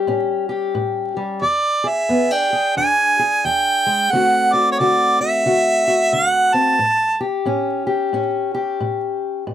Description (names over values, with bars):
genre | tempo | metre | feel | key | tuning
blues | 90 BPM | 4/4 | swing 61% on 8ths | A mixolydian | A4 = 440 Hz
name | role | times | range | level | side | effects
fingerpicked steel-string acoustic guitar | accompaniment | 0.0-9.5 s | E2 to G#4 | -20 LUFS | left 2 dB | none
clear harmonica | melody | 1.4-7.2 s | C#5 to A5 | -15 LUFS | right 2 dB | none
room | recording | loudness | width
light reverb | close, detailed microphones, vinyl crackle | -15 LUFS | side -10 dB against mid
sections
0.0-9.5 A section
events
none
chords
0.0 A7; 1.4 E7; 4.1 D7; 6.8 A7